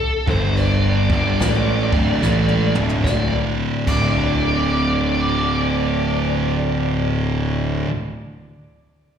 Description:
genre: stoner and doom metal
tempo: 73 BPM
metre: 4/4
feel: swing 65% on 8ths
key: unclear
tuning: A4 = 440 Hz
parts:
  - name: fuzz lead guitar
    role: melody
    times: 0.0-7.1 s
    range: A4 to D5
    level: -24 LUFS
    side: equal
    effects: wah, distortion, slapback echo, digital delay
  - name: thick fuzz guitar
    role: riff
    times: 0.3-7.9 s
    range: D2 to A3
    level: -24 LUFS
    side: left 7 dB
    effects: distortion, slapback echo
  - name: thick fuzz guitar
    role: riff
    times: 0.3-7.9 s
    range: D2 to A3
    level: -22 LUFS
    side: right 7 dB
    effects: distortion, slapback echo
  - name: fuzz picked electric bass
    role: bass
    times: 0.3-7.8 s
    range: D1 to A1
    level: -22 LUFS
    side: equal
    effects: overdrive
  - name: jazz brush drum kit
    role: drums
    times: 0.3-4.2 s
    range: crash cymbal, hi-hat, kick drum, snare drum, toms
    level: -23 LUFS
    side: equal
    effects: none
room: studio ambience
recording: live gig heard through the venue's PA, recital hall reverb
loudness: -16 LUFS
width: side -8 dB against mid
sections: 0.0-3.1 A section; 3.1-6.4 B section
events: drum fill 2.2-3.1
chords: 0.2 G5; 1.0 D5

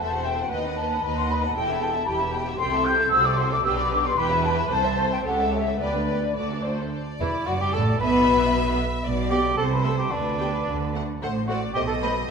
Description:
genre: quick classical-period movement for symphony orchestra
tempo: 106-117 BPM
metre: 2/4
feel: rubato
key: unclear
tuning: A4 = 440 Hz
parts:
  - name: rich studio violin section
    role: melody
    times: 0.0-12.1 s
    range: E4 to G5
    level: -33 LUFS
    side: left 6 dB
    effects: none
  - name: large flute ensemble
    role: second line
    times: 0.0-6.4 s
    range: D5 to G6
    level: -24 LUFS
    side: left 2 dB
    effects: none
  - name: rich studio violin section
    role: second line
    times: 0.0-12.3 s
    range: A3 to E5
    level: -32 LUFS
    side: left 4 dB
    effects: none
  - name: rich studio viola section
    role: accompaniment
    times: 0.0-12.1 s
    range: E3 to D5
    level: -29 LUFS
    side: right 1 dB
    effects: none
  - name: clear studio double bass section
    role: bass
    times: 0.0-12.3 s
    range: E1 to D#2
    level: -30 LUFS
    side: right 2 dB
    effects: none
  - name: rich studio cello section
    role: bass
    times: 0.0-12.2 s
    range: C2 to D3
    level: -30 LUFS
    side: right 3 dB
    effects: none
  - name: mellow cor anglais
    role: second line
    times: 7.2-12.1 s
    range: D4 to B4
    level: -25 LUFS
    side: right 1 dB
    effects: none
room: wet scoring stage reverb, RT60 2.0 s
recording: minimal, uncompressed stereo recording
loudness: -21 LUFS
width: side -5 dB against mid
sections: 0.0-6.9 A section; 6.9-12.3 B section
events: none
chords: 0.0 F#m7b5/E; 0.5 B/D#; 1.5 Em; 2.6 Am7/C; 3.6 G/B; 4.2 Em; 4.7 Am/C; 5.2 A7/C#; 5.8 G/D; 6.4 D; 6.9 Dsus2; 7.5 D/F#; 8.0 Bsus4; 9.0 G/B; 9.6 Am7/C; 10.1 G/D; 10.7 D5; 11.2 F#dim/A; 11.8 B7b9

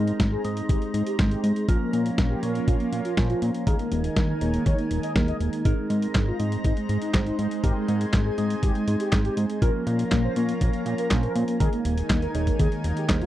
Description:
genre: italo disco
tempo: 121 BPM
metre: 4/4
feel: straight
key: Ab major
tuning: A4 = 442 Hz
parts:
  - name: mellow synth brass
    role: melody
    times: 0.0-13.3 s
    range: Ab3 to Eb5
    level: -29 LUFS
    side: equal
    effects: chorus, tape echo
  - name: lush unison pad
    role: sustained chords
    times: 0.0-13.3 s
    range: Eb3 to Bb5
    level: -32 LUFS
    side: equal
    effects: chorus
  - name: mellow tine electric piano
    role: stabs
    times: 0.0-13.3 s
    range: F3 to Eb5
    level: -31 LUFS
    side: right 3 dB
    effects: overdrive, phaser, low-pass filter
  - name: fat analog bass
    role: bass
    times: 0.0-13.3 s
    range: Eb1 to Bb2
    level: -26 LUFS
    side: equal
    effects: tube saturation
  - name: dusty soul sampler-style drum kit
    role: drums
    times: 0.1-13.3 s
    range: handclaps, hi-hat, snare drum, toms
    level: -29 LUFS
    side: equal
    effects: none
  - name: electronic kick drum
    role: drums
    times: 0.2-13.2 s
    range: none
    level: -24 LUFS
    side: equal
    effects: none
room: little or no reverb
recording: dry, close 1970s-style studio recording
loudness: -22 LUFS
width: side -14 dB against mid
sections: 0.0-13.3 A section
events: none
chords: 0.0 Abadd9; 1.7 Bbm; 3.7 Ebsus4; 5.7 Abadd9; 9.6 Bbm; 11.6 Ebsus4

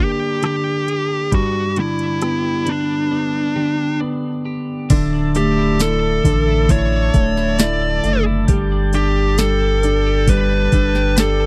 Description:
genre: pop ballad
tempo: 67 BPM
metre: 4/4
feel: straight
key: unclear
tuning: A4 = 444 Hz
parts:
  - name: fuzz lead guitar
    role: melody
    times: 0.0-11.5 s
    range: D4 to D5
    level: -22 LUFS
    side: equal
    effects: distortion
  - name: felt-muted upright piano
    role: accompaniment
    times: 0.0-11.5 s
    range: G2 to E4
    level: -24 LUFS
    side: equal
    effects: none
  - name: twelve-string electric guitar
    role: arpeggios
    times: 0.0-11.5 s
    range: D3 to B4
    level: -29 LUFS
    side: equal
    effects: tape echo
  - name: smooth R&B drum kit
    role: drums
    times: 0.4-11.4 s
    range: crash cymbal, hi-hat, kick drum, rim click, snare drum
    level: -19 LUFS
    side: equal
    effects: none
  - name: tonewheel organ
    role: sustained chords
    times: 4.9-11.5 s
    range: D4 to A5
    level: -31 LUFS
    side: equal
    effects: slow rotary speaker
  - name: saturated sub bass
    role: bass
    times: 4.9-11.5 s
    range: D1 to A1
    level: -22 LUFS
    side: equal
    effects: none
room: little or no reverb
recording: dry, close 1970s-style studio recording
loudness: -17 LUFS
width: mono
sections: 0.0-4.9 A section; 4.9-11.5 B section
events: none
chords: 0.0 Gm; 1.3 G; 4.9 Dsus2; 8.5 Gsus2

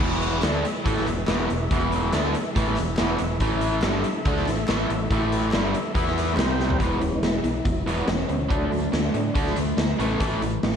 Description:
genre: classic rock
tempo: 141 BPM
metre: 4/4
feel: straight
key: E mixolydian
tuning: A4 = 436 Hz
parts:
  - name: tonewheel organ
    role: sustained chords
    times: 0.0-10.3 s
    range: C#3 to G5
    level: -31 LUFS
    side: left 1 dB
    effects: slow rotary speaker, overdrive, chorus vibrato
  - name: raw garage guitar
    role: riff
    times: 0.0-10.8 s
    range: E2 to E4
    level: -25 LUFS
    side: equal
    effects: overdrive, slapback echo
  - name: growling fingered electric bass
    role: bass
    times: 0.0-10.8 s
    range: E1 to A2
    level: -28 LUFS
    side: equal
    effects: overdrive
  - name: big rock drum kit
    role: drums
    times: 0.0-10.7 s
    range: crash cymbal, hi-hat, kick drum, snare drum, toms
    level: -26 LUFS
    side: equal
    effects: vintage 12-bit sampler grit
  - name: group handclap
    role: percussion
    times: 0.4-6.5 s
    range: none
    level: -43 LUFS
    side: left 2 dB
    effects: none
room: wet recital hall reverb, RT60 1.4 s, small room reverb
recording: big arena sound, cassette tape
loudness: -21 LUFS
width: side -7 dB against mid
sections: 0.0-6.8 A section; 6.8-10.8 B section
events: drum fill 6.6; tonewheel organ solo 6.8-10.8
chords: 0.0 E; 3.4 A5; 6.0 E5; 6.4 C5; 6.8 E; 8.5 D; 10.0 Aadd9

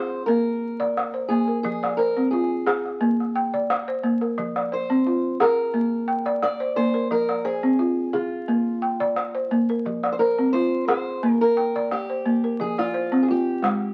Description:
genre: west african traditional, West African string and xylophone music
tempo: 88 BPM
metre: 4/4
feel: straight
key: F dorian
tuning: A4 = 439 Hz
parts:
  - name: fingerpicked old ladder-braced acoustic guitar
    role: melody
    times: 0.0-13.9 s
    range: F4 to D5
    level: -28 LUFS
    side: equal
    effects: none
  - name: balafon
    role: arpeggios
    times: 0.0-13.9 s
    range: F3 to G5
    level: -25 LUFS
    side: equal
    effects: none
  - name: calabash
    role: percussion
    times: 0.8-13.8 s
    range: none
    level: -30 LUFS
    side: equal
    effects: none
room: light reverb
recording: very old 78 rpm record, vinyl crackle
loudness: -23 LUFS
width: mono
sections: 0.0-13.9 A section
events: none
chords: 0.3 Bb; 1.6 Fm; 3.0 Bb; 4.4 Fm; 5.7 Bb; 7.1 Fm; 8.5 Bb; 9.8 Fm; 11.2 Bb; 12.6 Fm

